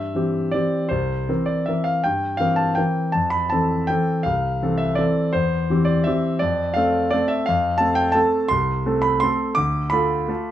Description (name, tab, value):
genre	classical, piano waltz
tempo	153-183 BPM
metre	3/4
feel	rubato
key	C major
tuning	A4 = 440 Hz
part	clear concert grand piano	solo	0.0-10.5 s	C2 to D6	-18 LUFS	equal	none
room	light reverb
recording	none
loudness	-18 LUFS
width	side -11 dB against mid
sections	0.0-10.5 A section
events	none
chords	0.0 C; 0.9 C7; 3.1 Fmaj7; 5.3 C/E; 6.4 Dm7/F; 7.5 F; 9.6 Dm